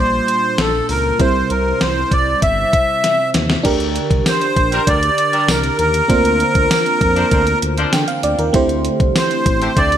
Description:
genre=1980s-style pop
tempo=98 BPM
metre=4/4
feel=straight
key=unclear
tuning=A4 = 440 Hz
part: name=accordion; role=melody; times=0.0-10.0 s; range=A4 to E5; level=-16 LUFS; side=equal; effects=light tremolo tuning
part: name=FM electric piano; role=accompaniment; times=0.0-10.0 s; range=Bb2 to G5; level=-20 LUFS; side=right 3 dB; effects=chorus
part: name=smooth synth bass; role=bass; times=0.0-10.0 s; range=G1 to D3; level=-21 LUFS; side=equal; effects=none
part: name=clean 12-bit digital drum machine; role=drums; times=0.3-10.0 s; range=crash cymbal, hi-hat, kick drum, snare drum, tambourine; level=-19 LUFS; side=left 1 dB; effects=gated reverb
part: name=clear horn section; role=stabs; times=4.7-9.9 s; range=F3 to C5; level=-25 LUFS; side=left 5 dB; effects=none
room=light reverb, digital ambience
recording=none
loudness=-13 LUFS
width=side -10 dB against mid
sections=0.0-3.6 A section; 3.6-10.0 B section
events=drum fill 3.0-3.6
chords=0.0 Bb6; 1.2 C; 3.6 Gm; 6.1 Bbadd9/D; 8.5 Am7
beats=0.58 | 1.20 1.81 2.42 3.03 | 3.65 4.26 4.87 5.48 | 6.09 6.71 7.32 7.93 | 8.54 9.16 9.77

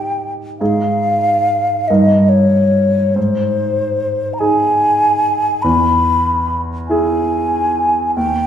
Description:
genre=classical, romantic duo for flute and grand piano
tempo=48 BPM (dotted quarters)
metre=6/8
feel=rubato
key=Ab major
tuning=A4 = 442 Hz
part: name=mellow hollow concert flute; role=melody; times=0.0-8.5 s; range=C5 to B5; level=-15 LUFS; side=left 1 dB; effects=none
part: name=warm grand piano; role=accompaniment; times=0.0-8.5 s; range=Eb2 to Bb4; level=-16 LUFS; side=right 1 dB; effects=none
room=wet recital hall reverb, RT60 1.4 s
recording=minimal, uncompressed stereo recording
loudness=-12 LUFS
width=side -9 dB against mid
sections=0.0-8.5 A section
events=none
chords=0.0 Eb/Ab; 0.6 Ab5; 1.9 Eb7/G; 3.2 Ab; 5.6 E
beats=| 0.60 1.89 | 3.17 4.40 | 5.63 6.89 | 8.16

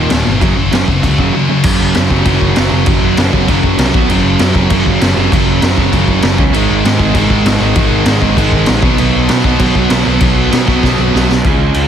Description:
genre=punk rock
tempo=196 BPM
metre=4/4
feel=straight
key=unclear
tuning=A4 = 441 Hz
part: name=distorted electric guitar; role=riff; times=0.0-11.9 s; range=Eb2 to Db4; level=-18 LUFS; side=left 11 dB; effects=distortion
part: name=heavy high-gain guitar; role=riff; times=0.0-11.3 s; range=Eb2 to B3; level=-19 LUFS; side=left 1 dB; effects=distortion
part: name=overdriven semi-hollow guitar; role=riff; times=0.0-11.9 s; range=Eb2 to Ab4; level=-15 LUFS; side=right 12 dB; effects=none
part: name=picked electric bass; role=bass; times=0.0-11.9 s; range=Eb1 to B2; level=-16 LUFS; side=left 1 dB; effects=none
part: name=raw garage drum kit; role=drums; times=0.1-11.8 s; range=crash cymbal, kick drum, snare drum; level=-14 LUFS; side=equal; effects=none
room=light reverb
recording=dense, heavily limited modern master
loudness=-9 LUFS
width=side -9 dB against mid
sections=0.0-1.6 A section; 1.6-11.4 B section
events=drum fill 10.8-11.4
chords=0.4 Gb5; 3.9 B5; 4.1 Gb5; 6.4 Db5; 6.5 Ab5; 8.8 B5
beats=0.11 | 0.42 0.72 1.03 1.34 | 1.64 1.95 2.25 2.56 | 2.87 3.17 3.48 3.79 | 4.09 4.40 4.71 5.01 | 5.32 5.62 5.93 6.24 | 6.54 6.85 7.16 7.46 | 7.77 8.08 8.38 8.69 | 9.00 9.30 9.61 9.92 | 10.22 10.53 10.84 11.14 | 11.45 11.76

